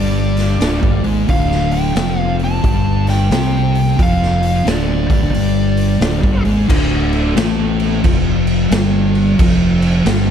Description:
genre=stoner and doom metal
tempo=89 BPM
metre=4/4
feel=swing 64% on 8ths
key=D minor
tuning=A4 = 441 Hz
part: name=fuzz lead guitar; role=melody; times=0.0-6.4 s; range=D5 to A5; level=-23 LUFS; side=right 1 dB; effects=distortion, tape echo
part: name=thick fuzz guitar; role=riff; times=0.0-10.3 s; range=D2 to C4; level=-18 LUFS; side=left 11 dB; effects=distortion
part: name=thick fuzz guitar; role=riff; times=0.0-10.3 s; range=D2 to C4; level=-20 LUFS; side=right 12 dB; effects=distortion
part: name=growling fingered electric bass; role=bass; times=0.0-10.3 s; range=D1 to C2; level=-18 LUFS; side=equal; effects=overdrive
part: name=raw garage drum kit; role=drums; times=0.4-10.3 s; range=crash cymbal, hi-hat, kick drum, snare drum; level=-18 LUFS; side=equal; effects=none
room=studio reverb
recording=dark, warm production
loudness=-12 LUFS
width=side -8 dB against mid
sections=0.0-6.7 A section; 6.7-10.3 B section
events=none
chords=0.0 Dm

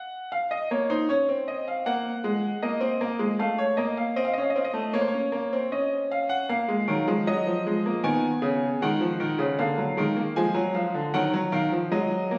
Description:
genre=classical, baroque-style 3-part fugue for grand piano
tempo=78 BPM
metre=4/4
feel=straight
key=Eb minor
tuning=A4 = 440 Hz
part: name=bright grand piano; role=solo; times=0.0-12.4 s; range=Db3 to Ab5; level=-26 LUFS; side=equal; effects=none
room=wet recital hall reverb, RT60 1.7 s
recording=recorded on a phone in the room, studio reverb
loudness=-26 LUFS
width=mono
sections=0.0-12.4 A section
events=none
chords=0.3 Bbm; 1.9 Ebm; 3.4 F7/A; 5.0 Bbm; 6.5 Ebm; 8.0 Abm; 9.6 Bb7/D; 11.1 Ebm

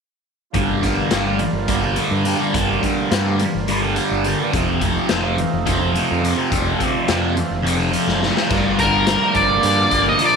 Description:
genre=psychedelic rock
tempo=211 BPM (eighths)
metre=7/8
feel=straight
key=G minor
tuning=A4 = 440 Hz
part: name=hand-pumped harmonium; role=sustained chords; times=0.5-10.4 s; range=G3 to F4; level=-26 LUFS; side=right 12 dB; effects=none
part: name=thick fuzz guitar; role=riff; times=0.5-10.4 s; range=F2 to D4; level=-19 LUFS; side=equal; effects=distortion, phaser
part: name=raw garage drum kit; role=drums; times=0.5-10.3 s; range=crash cymbal, hi-hat, kick drum, snare drum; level=-24 LUFS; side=left 4 dB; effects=none
part: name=growling fingered electric bass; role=bass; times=0.6-10.1 s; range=F1 to G2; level=-23 LUFS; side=equal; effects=overdrive
part: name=octave-fuzz lead guitar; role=melody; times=8.8-10.4 s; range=Bb4 to Eb5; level=-16 LUFS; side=left 1 dB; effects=distortion, slapback echo
room=light reverb, small room reverb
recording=1960s-style stereo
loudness=-16 LUFS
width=side -5 dB against mid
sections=0.6-8.5 A section; 8.5-10.4 B section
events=drum fill 8.1-8.5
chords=0.6 Gm7; 4.5 F7; 8.5 Gm7

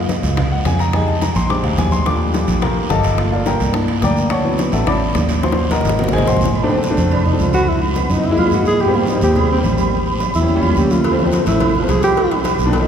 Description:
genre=Afro-Cuban jazz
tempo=214 BPM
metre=4/4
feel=straight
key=unclear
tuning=A4 = 441 Hz
part: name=fingered electric bass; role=bass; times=0.0-12.9 s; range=G1 to Ab2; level=-18 LUFS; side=equal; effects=none
part: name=bongos and cowbell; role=percussion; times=0.1-6.5, 11.0-12.9 s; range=none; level=-26 LUFS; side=left 3 dB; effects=none
part: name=congas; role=percussion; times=0.1-12.9 s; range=none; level=-24 LUFS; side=equal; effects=none
part: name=guiro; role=percussion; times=0.1-12.9 s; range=none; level=-32 LUFS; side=right 4 dB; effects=none
part: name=timbales and agogo bells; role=percussion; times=0.1-12.9 s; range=none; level=-26 LUFS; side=right 4 dB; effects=none
part: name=warm grand piano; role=accompaniment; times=0.2-12.9 s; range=Eb3 to D6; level=-19 LUFS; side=left 1 dB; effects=none
part: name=dark alto saxophone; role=melody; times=7.1-12.4 s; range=Ab3 to Ab4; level=-18 LUFS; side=right 1 dB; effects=none
room=wet church reverb, RT60 3.8 s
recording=recorded in a church or concert hall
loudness=-14 LUFS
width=side -8 dB against mid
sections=0.0-6.6 A section; 6.6-12.9 A section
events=grand piano solo 0.0-6.6; drum fill 5.4-6.6; alto saxophone solo 6.6-12.9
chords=0.0 Gbmaj9; 0.9 Fm9; 1.5 Bb13; 2.1 Ebmaj9#11; 3.2 Gm7; 3.7 C9; 4.3 Dmaj13; 5.4 Ebm7; 6.0 Ab9; 6.6 Bbmaj9; 7.7 Dbm7; 8.2 Gb9; 8.8 Abmaj9; 9.9 A7b9; 11.0 Dm7; 12.2 Cm7

